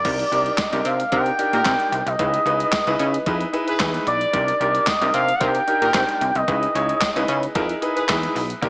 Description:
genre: early-eighties boogie funk.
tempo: 112 BPM.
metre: 4/4.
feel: straight.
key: unclear.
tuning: A4 = 440 Hz.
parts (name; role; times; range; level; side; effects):
expressive synth lead; melody; 0.0-8.0 s; D5 to G5; -21 LUFS; equal; chorus.
clear grand piano; accompaniment; 0.0-8.7 s; D4 to Db5; -24 LUFS; equal; slapback echo.
plucky analog bass; bass; 0.0-8.7 s; Cb2 to Db3; -24 LUFS; equal; none.
crisp 8-bit digital drum machine; drums; 0.0-8.7 s; crash cymbal, handclaps, hi-hat, kick drum, snare drum; -26 LUFS; equal; none.
mellow horn section; second line; 1.1-8.1 s; Eb4 to Cb5; -28 LUFS; equal; none.
semi-hollow electric guitar; riff; 8.6-8.7 s; Bb3; -33 LUFS; right 1 dB; none.
room: wet lush hall reverb, RT60 1.7 s.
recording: big arena sound, small speaker sound.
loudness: -18 LUFS.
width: side -28 dB against mid.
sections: 0.1-8.7 A section.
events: none.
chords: 0.1 Cm9; 2.2 Dbm9; 4.3 Cm9; 6.5 Dbm9.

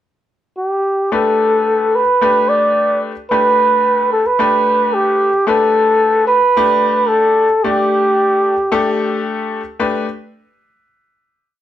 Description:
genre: jazz.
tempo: 111 BPM.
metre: 4/4.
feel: straight.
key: G major.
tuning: A4 = 440 Hz.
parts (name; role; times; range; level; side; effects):
trumpet with bucket mute; melody; 0.6-9.3 s; G4 to D5; -12 LUFS; right 1 dB; slapback echo.
bright grand piano; accompaniment; 1.1-10.0 s; A3 to D5; -19 LUFS; left 4 dB; none.
room: light reverb.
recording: none.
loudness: -12 LUFS.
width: side -11 dB against mid.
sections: 0.0-1.1 pickup bar; 1.1-9.8 groove; 9.8-11.6 final chord.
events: none.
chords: 0.0 N.C.; 1.1 Gadd9.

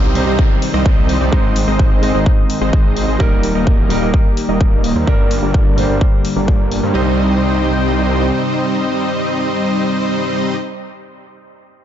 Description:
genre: EDM, festival progressive house.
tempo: 128 BPM.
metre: 4/4.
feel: straight.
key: C minor.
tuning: A4 = 439 Hz.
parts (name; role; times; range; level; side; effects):
clear concert grand piano; accompaniment; 0.0-11.8 s; G2 to Eb5; -23 LUFS; right 3 dB; sidechain pumping, dub echo.
lush unison pad; sustained chords; 0.0-10.6 s; C3 to G5; -22 LUFS; left 1 dB; chorus, sidechain pumping.
dense compressed supersaw; riff; 0.0-10.6 s; G3 to Eb5; -18 LUFS; equal; sidechain pumping, low-pass filter, dub echo.
wide detuned saw bass; bass; 0.0-8.3 s; Eb1 to G2; -19 LUFS; equal; chorus, sidechain pumping.
downlifter; sound effects; 0.0-3.2 s; none; -29 LUFS; left 1 dB; none.
electronic hi-hat; drums; 0.2-6.8 s; none; -30 LUFS; left 4 dB; none.
electronic kick drum; drums; 0.4-6.6 s; none; -13 LUFS; equal; none.
room: light reverb.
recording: dark, warm production, nothing above 7.7 kHz.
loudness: -12 LUFS.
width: side -10 dB against mid.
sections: 0.0-6.9 A section; 6.9-10.7 B section.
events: filter sweep on supersaw synth 0.0-6.9.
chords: 0.0 Cm; 1.3 Ab; 3.2 Eb; 5.1 Gm; 6.9 Cm.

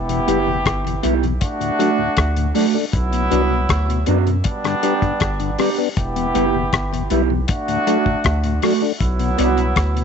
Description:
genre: roots reggae.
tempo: 79 BPM.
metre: 4/4.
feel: straight.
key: E minor.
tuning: A4 = 441 Hz.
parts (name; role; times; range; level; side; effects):
warm horn section; second line; 0.0-10.0 s; F#3 to G4; -22 LUFS; right 1 dB; tape echo.
soft dub sub bass; bass; 0.0-10.0 s; E1 to F#2; -21 LUFS; equal; none.
mellow tonewheel organ; accompaniment; 0.1-10.0 s; D2 to E4; -23 LUFS; left 14 dB; slow rotary speaker.
cloth-damped thuddy drum kit; drums; 0.1-10.0 s; hi-hat, kick drum, rim click; -22 LUFS; left 3 dB; none.
mellow electric guitar; accompaniment; 0.3-9.6 s; A3 to G4; -23 LUFS; right 14 dB; wide subtle chorus, tape echo.
room: light reverb, small room ambience.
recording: 1960s-style stereo with parts hard left and right, nothing above 8.0 kHz.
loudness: -16 LUFS.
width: side -6 dB against mid.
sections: 0.0-10.0 A section.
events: none.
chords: 0.0 Em; 1.4 D; 2.9 Bm; 4.5 G; 6.0 Em; 7.5 D; 9.0 Bm.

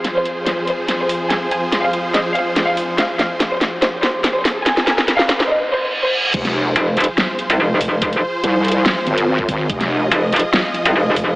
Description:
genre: heavy wobble dubstep.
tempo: 143 BPM.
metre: 4/4.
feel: half-time.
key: F minor.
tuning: A4 = 436 Hz.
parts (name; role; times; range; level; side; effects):
supersaw chords; sustained chords; 0.0-11.4 s; F2 to Eb5; -22 LUFS; equal; sidechain pumping.
dubstep drum kit; drums; 0.0-11.3 s; crash cymbal, hi-hat, snare drum; -19 LUFS; equal; high-pass filter on hats, studio reverb, high-pass filter on snare, high-pass filter on cymbals.
riser, reverse cymbal and sub drop; sound effects; 2.0-8.0 s; none; -24 LUFS; right 1 dB; none.
rich studio violin section; melody; 0.2-6.2 s; C5 to Ab5; -20 LUFS; equal; tape echo.
wobble bass; bass; 6.3-10.1 s; F1 to C2; -17 LUFS; equal; chorus, overdrive.
electronic kick drum; drums; 6.3-11.3 s; none; -26 LUFS; equal; studio reverb.
metallic wobble bass; bass; 6.8-11.4 s; F1 to C2; -14 LUFS; equal; distortion, chorus, overdrive.
room: moderate lush hall reverb, RT60 2.5 s.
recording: high-pass filter, AM radio sound.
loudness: -15 LUFS.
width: side -21 dB against mid.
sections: 0.0-6.3 A section; 6.3-11.4 B section.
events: build-up 0.0-6.3; drum fill 0.0-5.5; break 5.5-6.3; reverse cymbal 5.5-6.3; drop 6.3-11.4; impact 6.3-8.0.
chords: 0.0 Fm.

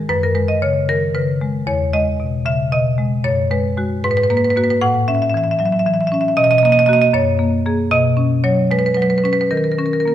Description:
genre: classical, contemporary piece for solo marimba.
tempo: 77 BPM (dotted quarters).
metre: 6/8.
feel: straight.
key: unclear.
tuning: A4 = 442 Hz.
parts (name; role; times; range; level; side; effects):
marimba with medium hard mallets; solo; 0.0-10.1 s; E2 to F#5; -14 LUFS; equal; none.
room: wet recital hall reverb, RT60 1.6 s.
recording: none.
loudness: -14 LUFS.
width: side -11 dB against mid.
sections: 0.0-10.1 A section.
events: none.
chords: 0.1 F#sus24; 1.7 E6; 3.2 F#sus24; 4.0 G#m9; 4.8 A; 6.4 Bmaj7; 7.1 F#add9; 7.9 Badd9; 9.5 D#5.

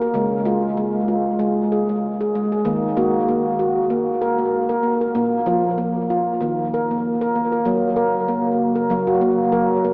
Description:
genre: world meditative, meditative tuned percussion.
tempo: 96 BPM.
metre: 4/4.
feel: swing 54% on 16ths.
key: Eb minor.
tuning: A4 = 444 Hz.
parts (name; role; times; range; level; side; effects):
handpan; arpeggios; 0.0-9.9 s; Bb2 to Bb4; -17 LUFS; equal; diffuse ambient delay.
warbly tape-like pad; sustained chords; 8.1-9.9 s; Db3 to Gb4; -23 LUFS; equal; chorus, built-in reverb.
room: wet huge ambient reverb, RT60 8.3 s.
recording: dreamy mix soaked in reverb, small speaker sound.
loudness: -17 LUFS.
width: side -36 dB against mid.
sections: 0.0-7.7 A section; 7.7-9.9 B section.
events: none.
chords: 0.1 Db (rootless); 2.7 Ebm (rootless); 5.2 Bb5; 6.4 Eb5; 7.7 Gb.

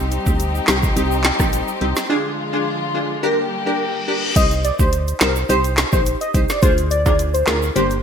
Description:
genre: dancehall.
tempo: 106 BPM.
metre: 4/4.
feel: straight.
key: C minor.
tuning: A4 = 440 Hz.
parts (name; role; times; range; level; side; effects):
wavetable chord stab; accompaniment; 0.0-8.0 s; Bb3 to C5; -22 LUFS; equal; lush chorus, sidechain pumping.
dark chamber string section; sustained chords; 0.0-4.3 s; D3 to G4; -24 LUFS; left 2 dB; sidechain pumping.
solid FM bass; bass; 0.0-8.0 s; G1 to D2; -21 LUFS; equal; none.
afro-pop drum kit; drums; 0.1-8.0 s; crash cymbal, handclaps, hi-hat, kick drum, rim click, snare drum; -19 LUFS; equal; gated reverb.
egg shaker and timbales; percussion; 0.1-8.0 s; none; -32 LUFS; right 10 dB; none.
reverse cymbal; sound effects; 3.6-4.4 s; none; -27 LUFS; left 5 dB; none.
warm velvety synth lead; melody; 4.4-7.9 s; Bb4 to Eb5; -21 LUFS; left 1 dB; chorus.
room: moderate lush hall reverb, RT60 1.9 s.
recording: bright 1980s-style digital production.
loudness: -16 LUFS.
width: side -7 dB against mid.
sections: 0.0-4.4 A section; 4.4-8.0 B section.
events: break 2.1-4.4; reverse cymbal 3.6-4.4.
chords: 0.0 Cm; 2.1 Ddim; 3.2 Gm; 4.4 Cm; 6.6 Ddim.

